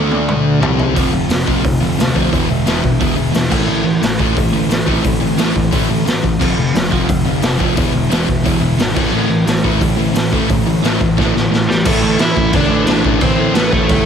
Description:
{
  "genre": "punk rock",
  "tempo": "176 BPM",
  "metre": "4/4",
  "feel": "straight",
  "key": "A minor",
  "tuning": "A4 = 440 Hz",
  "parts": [
    { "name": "overdriven semi-hollow guitar", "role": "melody", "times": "0.0-0.6, 11.7-14.0 s", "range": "G3 to A5", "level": "-19 LUFS", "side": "equal", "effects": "digital delay" },
    { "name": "crunchy overdriven guitar", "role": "riff", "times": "0.0-11.7 s", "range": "A2 to F4", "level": "-22 LUFS", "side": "left 1 dB", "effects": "none" },
    { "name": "overdriven semi-hollow guitar", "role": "riff", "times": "0.0-14.1 s", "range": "E2 to D4", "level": "-19 LUFS", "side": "right 12 dB", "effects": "none" },
    { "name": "sludgy distorted guitar", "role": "riff", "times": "0.0-14.1 s", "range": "E2 to D4", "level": "-19 LUFS", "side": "left 12 dB", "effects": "overdrive" },
    { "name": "overdriven picked electric bass", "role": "bass", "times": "0.0-14.0 s", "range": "E1 to D2", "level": "-21 LUFS", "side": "equal", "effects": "none" },
    { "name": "raw garage drum kit", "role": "drums", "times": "0.1-14.0 s", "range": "crash cymbal, hi-hat, kick drum, snare drum, toms", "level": "-17 LUFS", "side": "equal", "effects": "none" }
  ],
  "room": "light reverb",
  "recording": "none",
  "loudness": "-12 LUFS",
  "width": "side -7 dB against mid",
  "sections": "1.0-11.9 A section; 11.9-14.1 B section",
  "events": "drum fill 0.0-1.0, 11.2-11.9",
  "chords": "0.0 D5; 0.6 C5; 1.0 F; 2.3 E; 3.5 Am; 6.4 F; 7.8 E; 9.0 Am",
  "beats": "0.29 0.63 | 0.96 1.30 1.64 1.98 | 2.32 2.66 3.00 3.34 | 3.68 4.02 4.36 4.70 | 5.04 5.38 5.72 6.06 | 6.40 6.74 7.08 7.43 | 7.77 8.11 8.45 8.79 | 9.13 9.47 9.81 10.15 | 10.49 10.84 11.18 11.52 | 11.86 12.20 12.54 12.87 | 13.21 13.55 13.89"
}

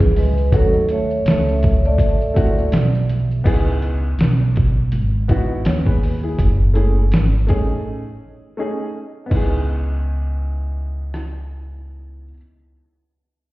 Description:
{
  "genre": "hip hop, jazz-hop",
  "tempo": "82 BPM",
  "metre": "4/4",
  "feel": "swing 58% on 16ths",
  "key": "C# minor",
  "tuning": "A4 = 441 Hz",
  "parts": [
    { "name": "vibraphone with soft mallets", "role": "melody", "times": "0.0-3.1 s", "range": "G#4 to D5", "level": "-22 LUFS", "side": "right 1 dB", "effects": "none" },
    { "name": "breathy trombone", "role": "second line", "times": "0.0-3.1 s", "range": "E3 to A3", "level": "-25 LUFS", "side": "right 2 dB", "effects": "analog delay" },
    { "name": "upright bass", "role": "bass", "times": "0.0-12.3 s", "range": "F#1 to D#2", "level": "-18 LUFS", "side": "equal", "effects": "none" },
    { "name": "dusty soul sampler-style drum kit", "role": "drums", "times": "0.0-11.3 s", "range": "crash cymbal, hi-hat, kick drum, rim click, snare drum", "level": "-18 LUFS", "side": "equal", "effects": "overdrive, vintage 12-bit sampler grit" },
    { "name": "maracas and congas", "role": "percussion", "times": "0.0-3.4 s", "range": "none", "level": "-35 LUFS", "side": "right 3 dB", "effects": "none" },
    { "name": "dark grand piano", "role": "accompaniment", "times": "0.5-12.3 s", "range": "A3 to C#5", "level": "-26 LUFS", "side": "left 1 dB", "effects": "none" }
  ],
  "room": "small room ambience",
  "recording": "heard muffled through a wall, stone room reverb, EQ",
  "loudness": "-16 LUFS",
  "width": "side -18 dB against mid",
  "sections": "0.0-3.5 A section; 3.5-9.3 B section; 9.3-12.2 C section",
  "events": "break 7.8-9.3",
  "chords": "0.0 E; 0.5 D#m7b5; 2.0 D9; 3.5 C#m7; 6.4 F#m7; 7.8 Amaj7#11; 9.3 C#m7",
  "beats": "| 0.53 1.26 1.99 2.72 | 3.46 4.19 4.92 5.65 | 6.38 7.12 7.85 8.58 | 9.31 10.04 10.77 11.51"
}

